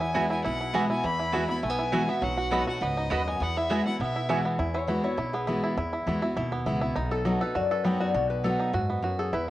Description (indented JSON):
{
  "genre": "bluegrass",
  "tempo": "203 BPM",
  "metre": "4/4",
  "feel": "straight",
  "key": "E major",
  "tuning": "A4 = 440 Hz",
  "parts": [
    { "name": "bluegrass banjo", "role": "melody", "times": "0.0-9.5 s", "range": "E3 to A4", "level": "-30 LUFS", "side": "right 2 dB", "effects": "none" },
    { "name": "clear fiddle", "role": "melody", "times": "0.0-4.4 s", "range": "D#5 to B5", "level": "-32 LUFS", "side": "left 2 dB", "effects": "none" },
    { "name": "picked steel-string acoustic guitar", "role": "accompaniment", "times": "0.0-9.5 s", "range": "E2 to F#4", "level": "-29 LUFS", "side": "left 1 dB", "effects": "cassette tape" },
    { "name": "upright bass", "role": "bass", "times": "0.0-9.5 s", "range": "B1 to F#2", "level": "-35 LUFS", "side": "equal", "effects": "none" },
    { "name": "mandolin", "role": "stabs", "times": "0.1-4.4 s", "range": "B3 to B5", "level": "-32 LUFS", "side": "right 3 dB", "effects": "cassette tape" },
    { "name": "lap resonator guitar", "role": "second line", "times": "4.7-9.5 s", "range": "G#4 to G5", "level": "-31 LUFS", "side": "left 5 dB", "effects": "cassette tape" }
  ],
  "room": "moderate spring reverb, RT60 2.2 s",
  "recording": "home recording on cassette",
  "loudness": "-25 LUFS",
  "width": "side -15 dB against mid",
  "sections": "0.0-4.6 A section; 4.6-9.5 B section",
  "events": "resonator guitar played with a steel bar solo 4.6-9.5",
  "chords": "0.0 Eadd9; 2.2 B; 3.4 Eadd9; 7.0 B"
}